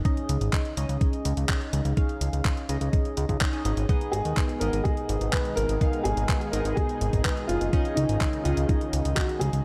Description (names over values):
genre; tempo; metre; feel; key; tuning
italo disco; 125 BPM; 4/4; straight; unclear; A4 = 440 Hz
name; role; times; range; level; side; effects
chorused polysynth; stabs; 0.0-9.6 s; B3 to E#5; -35 LUFS; equal; cassette tape, digital delay
clean 12-bit digital drum machine; drums; 0.1-9.6 s; handclaps, hi-hat; -36 LUFS; equal; studio ambience
electronic kick drum; drums; 0.1-9.3 s; none; -28 LUFS; equal; studio ambience
fat analog bass; bass; 0.3-9.6 s; F#1 to D#2; -29 LUFS; equal; none
lush unison pad; sustained chords; 3.9-9.6 s; B2 to G#4; -37 LUFS; equal; chorus
dark concert grand piano; melody; 4.1-9.6 s; D#4 to B4; -32 LUFS; equal; digital delay
room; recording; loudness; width
light reverb; dark, warm production; -26 LUFS; mono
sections
0.0-9.6 A section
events
filter sweep on analog polysynth 0.0-9.6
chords
0.1 C#sus2; 3.9 G#m; 7.7 C#sus2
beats
| 0.05 0.53 1.01 1.49 | 1.97 2.45 2.93 3.41 | 3.89 4.37 4.85 5.33 | 5.81 6.29 6.77 7.25 | 7.73 8.21 8.69 9.17